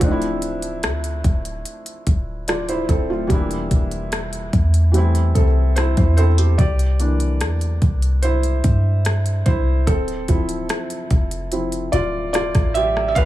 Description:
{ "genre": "contemporary R&B", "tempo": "73 BPM", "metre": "4/4", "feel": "straight", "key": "D minor", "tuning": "A4 = 439 Hz", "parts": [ { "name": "felt-muted upright piano", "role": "accompaniment", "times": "0.0-13.3 s", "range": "E3 to F5", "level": "-22 LUFS", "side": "right 1 dB", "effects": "none" }, { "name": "clean 808-style bass", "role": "bass", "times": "0.0-13.3 s", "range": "D1 to G2", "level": "-19 LUFS", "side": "equal", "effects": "none" }, { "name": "smooth R&B drum kit", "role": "drums", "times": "0.0-13.3 s", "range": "hi-hat, kick drum, rim click", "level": "-21 LUFS", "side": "equal", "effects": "none" } ], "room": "little or no reverb", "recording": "small room ambience", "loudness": "-17 LUFS", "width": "side -14 dB against mid", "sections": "0.0-6.6 A section; 6.6-13.3 B section", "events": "felt piano solo 6.6-13.3", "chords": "0.0 Dm9; 3.3 Em7b5; 4.9 Am7; 6.6 C7; 9.9 Dm9" }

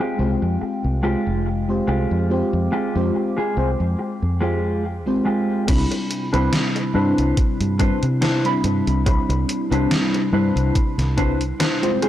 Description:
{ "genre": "vaporwave", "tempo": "71 BPM", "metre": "4/4", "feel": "swing 55% on 16ths", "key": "C major", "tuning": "A4 = 440 Hz", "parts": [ { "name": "mellow FM electric piano", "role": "accompaniment", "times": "0.0-12.1 s", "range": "G3 to B5", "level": "-23 LUFS", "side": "left 1 dB", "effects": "phaser, lush chorus, tape echo" }, { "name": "warbly tape-like pad", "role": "sustained chords", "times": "0.0-12.1 s", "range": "C3 to D6", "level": "-29 LUFS", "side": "equal", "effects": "chorus, built-in reverb" }, { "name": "mellow electric guitar", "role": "riff", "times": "0.0-12.1 s", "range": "Ab3 to C5", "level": "-25 LUFS", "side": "left 1 dB", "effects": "wide subtle chorus, tape echo" }, { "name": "fingered electric bass", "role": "bass", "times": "0.2-11.5 s", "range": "F1 to C3", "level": "-22 LUFS", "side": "equal", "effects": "none" }, { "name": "electronic kick drum", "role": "drums", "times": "5.7-11.4 s", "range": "none", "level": "-20 LUFS", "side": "equal", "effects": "none" }, { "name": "gated 80s digital drum machine", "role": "drums", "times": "5.7-12.1 s", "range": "crash cymbal, hi-hat, snare drum", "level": "-26 LUFS", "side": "equal", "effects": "gated reverb, gated reverb snare" } ], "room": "light reverb", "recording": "dry, gritty hardware recording, low-pass filter", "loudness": "-18 LUFS", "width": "side -12 dB against mid", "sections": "0.0-5.7 A section; 5.7-12.1 B section", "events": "none", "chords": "0.0 Fmadd9; 5.7 Cmaj9" }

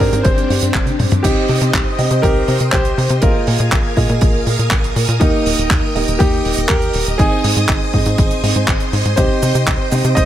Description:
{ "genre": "italo disco", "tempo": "121 BPM", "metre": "4/4", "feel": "straight", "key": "C minor", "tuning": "A4 = 441 Hz", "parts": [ { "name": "warm grand piano", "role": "melody", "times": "0.0-10.3 s", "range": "Bb3 to Eb5", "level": "-21 LUFS", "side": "equal", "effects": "tape echo" }, { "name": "string machine, full ensemble", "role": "sustained chords", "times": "0.0-10.3 s", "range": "C4 to Eb6", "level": "-22 LUFS", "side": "equal", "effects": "phaser, ensemble chorus" }, { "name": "dark baby grand piano", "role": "stabs", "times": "0.0-10.3 s", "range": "Bb3 to Eb5", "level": "-22 LUFS", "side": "right 2 dB", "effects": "none" }, { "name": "tight sequencer bass", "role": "bass", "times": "0.0-10.3 s", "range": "Eb1 to C3", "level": "-18 LUFS", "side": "equal", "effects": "tube saturation" }, { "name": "damped 70s drum kit", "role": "drums", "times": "0.0-10.3 s", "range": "cabasa, crash cymbal, handclaps, hi-hat, toms", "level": "-21 LUFS", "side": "right 1 dB", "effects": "none" }, { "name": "electronic kick drum", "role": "drums", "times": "0.0-10.3 s", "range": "none", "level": "-17 LUFS", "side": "equal", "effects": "none" } ], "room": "studio ambience", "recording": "none", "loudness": "-13 LUFS", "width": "side -12 dB against mid", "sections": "0.0-1.2 A section; 1.2-10.3 B section", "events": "drum fill 0.9-1.2", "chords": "0.2 Gsus4; 1.2 Cm; 3.2 Bb7sus4; 5.2 Eb; 7.2 Ab; 9.2 Cm" }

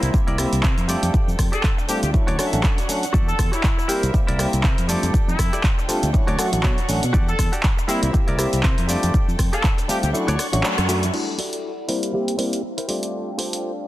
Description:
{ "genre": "filtered disco house", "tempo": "120 BPM", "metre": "4/4", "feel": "swing 57% on 16ths", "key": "unclear", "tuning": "A4 = 440 Hz", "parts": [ { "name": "bright trumpet section", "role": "melody", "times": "0.0-10.1 s", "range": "E4 to A4", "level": "-29 LUFS", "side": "left 1 dB", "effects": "sidechain pumping, low-pass filter, ping-pong delay" }, { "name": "mellow clav", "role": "accompaniment", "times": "0.0-13.9 s", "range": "F3 to G4", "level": "-25 LUFS", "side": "equal", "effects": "phaser, vintage 12-bit sampler grit, sidechain pumping, low-pass filter" }, { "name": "warm chamber violin section", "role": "sustained chords", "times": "0.0-13.9 s", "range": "G3 to C#6", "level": "-33 LUFS", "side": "left 1 dB", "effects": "sidechain pumping, low-pass filter" }, { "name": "direct-recorded clean electric guitar", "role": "riff", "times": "0.0-13.7 s", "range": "E4 to F#5", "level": "-30 LUFS", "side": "equal", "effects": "sidechain pumping, low-pass filter" }, { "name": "fingered electric bass", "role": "bass", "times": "0.0-11.1 s", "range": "A1 to C3", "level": "-23 LUFS", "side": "equal", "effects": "sidechain pumping, low-pass filter" }, { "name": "punchy analog drum machine", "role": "drums", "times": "0.0-13.6 s", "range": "cabasa, crash cymbal, handclaps, hi-hat, rim click", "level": "-27 LUFS", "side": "equal", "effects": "sidechain pumping on hats, sidechain pumping on perc, sidechain pumping on cymbals" }, { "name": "electronic kick drum", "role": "drums", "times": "0.1-9.8 s", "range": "none", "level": "-19 LUFS", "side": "equal", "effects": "none" } ], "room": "light reverb, digital ambience", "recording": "dense, heavily limited modern master", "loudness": "-18 LUFS", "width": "side -15 dB against mid", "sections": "0.0-11.1 A section; 11.1-13.9 B section", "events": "clean electric guitar fill 2.1-3.1, 10.4-11.1; kick drops out 10.1-11.1; band accent 10.6; filter sweep 11.1-13.9", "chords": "0.0 C7; 0.9 F69; 2.1 Dmaj7; 3.1 Em11; 3.9 C7; 4.9 F69; 6.1 Dmaj7; 7.1 Em11; 7.9 C7; 8.9 F69; 10.1 Dmaj7; 11.1 Em11; 11.9 C7; 12.9 F69" }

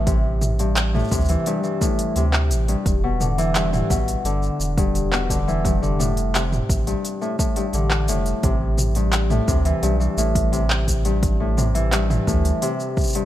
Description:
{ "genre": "folktronica", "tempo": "86 BPM", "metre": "4/4", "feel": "straight", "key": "A minor", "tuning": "A4 = 440 Hz", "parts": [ { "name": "Celtic harp", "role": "arpeggios", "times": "0.0-13.2 s", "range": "G2 to E3", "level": "-23 LUFS", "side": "left 2 dB", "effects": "digital delay" }, { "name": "warm sub bass", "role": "bass", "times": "0.0-12.5 s", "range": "E1 to D2", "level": "-22 LUFS", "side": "equal", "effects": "none" }, { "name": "electronic kick drum", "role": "drums", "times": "0.1-13.1 s", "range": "none", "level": "-23 LUFS", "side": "equal", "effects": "overdrive" }, { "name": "organic electronic drum kit", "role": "drums", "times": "0.1-13.2 s", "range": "handclaps, hi-hat, shaker, toms", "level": "-25 LUFS", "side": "right 1 dB", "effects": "overdrive" } ], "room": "little or no reverb", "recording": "none", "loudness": "-18 LUFS", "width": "side -13 dB against mid", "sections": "0.0-13.2 A section", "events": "none", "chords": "0.0 Am7; 2.9 Em7; 5.6 Dm7/F; 8.4 Am7" }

